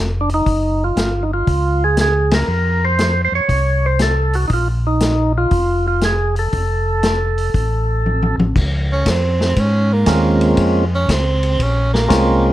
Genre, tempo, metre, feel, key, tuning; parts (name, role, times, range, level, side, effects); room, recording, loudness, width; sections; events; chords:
soul jazz organ trio; 119 BPM; 4/4; swing 68% on 8ths; Bb minor; A4 = 440 Hz
mellow tonewheel organ; bass; 0.0-12.5 s; F1 to Ab2; -18 LUFS; equal; overdrive, chorus vibrato, slow rotary speaker
percussive tonewheel organ; melody; 0.2-12.5 s; Ab3 to Db5; -17 LUFS; right 1 dB; slow rotary speaker, plate reverb
vintage drum kit; drums; 0.3-12.3 s; crash cymbal, hi-hat, kick drum, ride cymbal, snare drum, toms; -20 LUFS; left 1 dB
edgy tenor saxophone; melody; 8.9-12.5 s; Bb3 to Db4; -20 LUFS; right 2 dB; plate reverb
light reverb; dark, warm production; -14 LUFS; side -14 dB against mid
0.0-8.5 A section; 8.5-12.5 B section
band accent 2.2; drum fill 8.0-8.5; tenor saxophone solo 8.5-12.5
0.5 Gb5; 2.5 F5; 4.5 Bb5; 6.5 F; 8.5 Bbm9